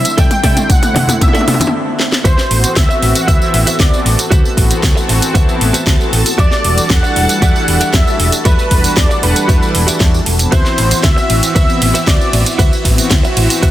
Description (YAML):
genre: nu-disco, nu disco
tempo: 116 BPM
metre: 4/4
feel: straight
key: D mixolydian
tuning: A4 = 441 Hz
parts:
  - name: wide unison lead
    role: melody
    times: 0.0-12.5 s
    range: B4 to G5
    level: -18 LUFS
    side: equal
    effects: analog delay
  - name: string machine, full ensemble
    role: sustained chords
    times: 0.0-13.7 s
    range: C4 to C6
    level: -23 LUFS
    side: equal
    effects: ensemble chorus, sidechain pumping
  - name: house drum kit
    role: drums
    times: 0.1-13.7 s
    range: hi-hat, ride cymbal, snare drum, tambourine, toms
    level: -16 LUFS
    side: equal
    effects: none
  - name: direct-recorded clean electric guitar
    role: riff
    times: 0.2-13.7 s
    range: F#4 to E5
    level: -23 LUFS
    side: right 4 dB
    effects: lush chorus, analog delay
  - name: hollow-body short-scale fingered electric bass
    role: bass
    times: 0.2-13.7 s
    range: E1 to C3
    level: -16 LUFS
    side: equal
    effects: sidechain pumping
  - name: electronic kick drum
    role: drums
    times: 0.2-13.7 s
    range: none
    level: -13 LUFS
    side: equal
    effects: none
  - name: congas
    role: percussion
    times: 0.2-1.7 s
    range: none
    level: -22 LUFS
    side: left 2 dB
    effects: none
  - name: warm analog pad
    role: accompaniment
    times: 0.4-13.7 s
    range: D3 to F#5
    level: -19 LUFS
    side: equal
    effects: chorus, sidechain pumping, analog delay
room: light reverb, digital ambience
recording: dense, heavily limited modern master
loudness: -10 LUFS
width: side -13 dB against mid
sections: 0.0-2.2 A section; 2.2-13.7 B section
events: build-up 0.0-2.2; drum fill 0.0-1.7, 2.0; stop 1.7-2.2; drop 2.2-13.7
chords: 0.0 C69; 2.2 D13; 6.4 Em9; 10.5 D13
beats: | 0.18 0.70 1.21 1.73 | 2.25 2.77 3.28 3.80 | 4.32 4.83 5.35 5.87 | 6.39 6.90 7.42 7.94 | 8.46 8.97 9.49 10.01 | 10.53 11.04 11.56 12.08 | 12.59 13.11 13.63